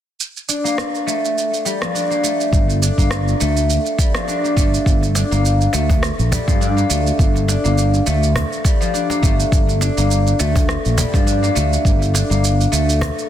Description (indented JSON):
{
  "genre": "organic downtempo",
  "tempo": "103 BPM",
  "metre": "4/4",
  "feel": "swing 55% on 16ths",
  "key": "G minor",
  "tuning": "A4 = 440 Hz",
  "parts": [
    { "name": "electronic shaker and rim click", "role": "drums", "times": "0.2-13.3 s", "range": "none", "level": "-24 LUFS", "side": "right 4 dB", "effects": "soft clipping on snare" },
    { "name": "guzheng", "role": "arpeggios", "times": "0.5-13.3 s", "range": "F3 to D4", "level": "-20 LUFS", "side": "left 1 dB", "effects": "low-pass filter, tape echo" },
    { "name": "sustaining fretless electric bass", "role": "bass", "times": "2.5-13.1 s", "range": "G1 to G2", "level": "-17 LUFS", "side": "equal", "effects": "ensemble chorus, sidechain pumping" },
    { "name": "electronic kick drum", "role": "drums", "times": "2.5-12.0 s", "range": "none", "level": "-16 LUFS", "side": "equal", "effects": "none" },
    { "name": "cajon", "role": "percussion", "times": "5.0-13.1 s", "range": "none", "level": "-26 LUFS", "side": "left 1 dB", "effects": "none" }
  ],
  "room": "light reverb",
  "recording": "dense, heavily limited modern master",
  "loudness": "-14 LUFS",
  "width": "side -11 dB against mid",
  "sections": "0.2-4.9 A section; 4.9-13.3 B section",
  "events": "none",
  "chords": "0.2 Gm9"
}